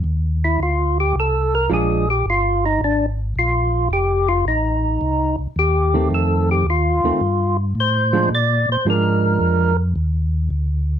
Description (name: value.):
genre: jazz.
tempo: 109 BPM.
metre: 4/4.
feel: swing 69% on 8ths.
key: unclear.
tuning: A4 = 440 Hz.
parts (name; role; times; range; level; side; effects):
mellow tonewheel organ; bass; 0.0-11.0 s; F1 to Bb2; -20 LUFS; equal; chorus vibrato, slow rotary speaker.
percussive tonewheel organ; melody; 0.4-9.8 s; D4 to D5; -19 LUFS; equal; slow rotary speaker, overdrive.
hollow-body jazz guitar; accompaniment; 1.7-2.0, 5.9-9.7 s; Eb3 to D4; -21 LUFS; right 4 dB; none.
room: light reverb.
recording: none.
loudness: -16 LUFS.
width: side -9 dB against mid.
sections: 0.0-11.0 A section.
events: tonewheel organ solo 0.0-11.0.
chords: 0.0 F7; 1.7 Bb7; 3.9 F7; 8.3 Bb7.